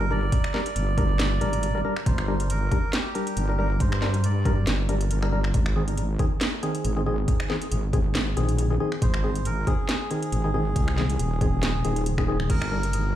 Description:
deep dubstep; 138 BPM; 4/4; swing 54% on 16ths, half-time; G phrygian; A4 = 439 Hz
melodica; melody; 0.0-4.6, 9.0-13.2 s; G4 to D5; -33 LUFS; right 2 dB; dub echo
percussive organ stab; stabs; 0.0-12.8 s; Eb3 to Bb4; -29 LUFS; left 2 dB; wide subtle chorus, dub echo
wobble bass; bass; 0.0-13.1 s; Eb1 to G2; -24 LUFS; equal; chorus
electronic kick drum; drums; 0.3-12.6 s; -25 LUFS; equal; overdrive
garage drum kit; drums; 0.3-13.0 s; crash cymbal, finger snaps, hi-hat, snare drum; -31 LUFS; right 1 dB
deep dark ambient pad; sustained chords; 12.8-13.2 s; G3 to G4; -38 LUFS; left 2 dB; chorus, built-in reverb
little or no reverb; played on a big sound system in a bare room, large studio reverb; -22 LUFS; side -12 dB against mid
0.0-13.2 A section
0.0 Gm; 5.5 Ab; 12.5 Gm
| 0.32 0.76 1.19 1.63 | 2.06 2.50 2.93 3.37 | 3.80 4.24 4.67 5.11 | 5.54 5.98 6.41 6.85 | 7.28 7.71 8.15 8.59 | 9.02 9.46 9.89 10.32 | 10.76 11.19 11.63 12.06 | 12.50 12.93

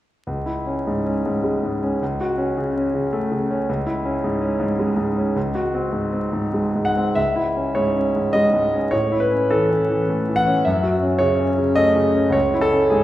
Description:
classical, romantic character piece for solo piano; 92-111 BPM; 3/4; rubato; C# minor; A4 = 437 Hz
bright concert grand piano; solo; 0.3-13.0 s; C#2 to F#5; -18 LUFS; equal
wet recital hall reverb, RT60 1.5 s; heard from further back in the room, vinyl crackle; -18 LUFS; side -14 dB against mid
0.3-7.2 A section; 7.2-13.0 B section
0.3 C#m; 2.0 F#m/C#; 3.7 C#m; 5.4 G#7/C#; 7.2 C#m; 8.9 A; 10.7 F#m7; 12.3 C#m
| 0.26 0.86 1.44 | 2.01 2.57 3.13 | 3.68 4.22 4.79 | 5.36 5.94 6.54 | 7.17 7.76 8.35 | 8.92 9.50 10.08 | 10.65 11.21 11.77 | 12.34 12.90

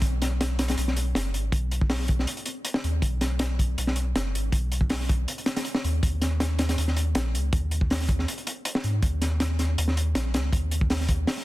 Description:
drum and bass, jungle; 160 BPM; 4/4; straight; Eb minor; A4 = 440 Hz
saturated sub bass; bass; 0.0-11.3 s; F#1 to Ab2; -26 LUFS; equal
crunchy breakbeat drum kit; drums; 0.0-11.4 s; hi-hat, kick drum, snare drum; -26 LUFS; equal
little or no reverb; dense, heavily limited modern master; -23 LUFS; side -17 dB against mid
0.0-11.4 A section
| 0.03 0.40 0.78 1.15 | 1.53 1.90 2.28 2.65 | 3.03 3.40 3.78 4.15 | 4.53 4.90 5.28 5.65 | 6.03 6.40 6.78 7.15 | 7.53 7.90 8.28 8.65 | 9.03 9.40 9.78 10.15 | 10.53 10.90 11.28

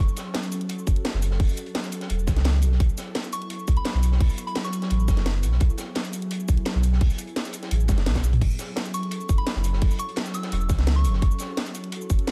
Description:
liquid drum and bass; 171 BPM; 4/4; straight; F# minor; A4 = 440 Hz
glassy FM pad; sustained chords; 0.0-12.3 s; F#3 to A4; -36 LUFS; equal; ensemble chorus, built-in reverb, sidechain pumping
warm sub bass; bass; 0.0-12.2 s; E1 to C#2; -24 LUFS; equal
crunchy breakbeat drum kit; drums; 0.0-12.3 s; hi-hat, snare drum; -41 LUFS; equal; high-pass filter on hats, small room reverb, high-pass filter on snare, high-pass filter on room
garage drum kit; drums; 0.1-12.3 s; cabasa, crash cymbal, hi-hat, snare drum, toms; -33 LUFS; equal; small room reverb
electronic kick drum; drums; 0.9-12.2 s; -25 LUFS; equal; small room reverb
soft synth bell; melody; 3.3-5.1, 8.9-11.2 s; B5 to E6; -38 LUFS; equal; chorus, delay
digital ambience; -24 LUFS; mono
0.0-12.3 A section
drum fill 7.9-8.4
0.0 F#m; 2.6 B7sus4; 8.4 F#m7
0.34 0.70 1.05 | 1.40 1.75 2.10 2.45 | 2.80 3.15 3.50 3.85 | 4.20 4.55 4.91 5.26 | 5.61 5.96 6.31 6.66 | 7.01 7.36 7.71 8.06 | 8.41 8.77 9.12 9.47 | 9.82 10.17 10.52 10.87 | 11.22 11.57 11.92 12.28

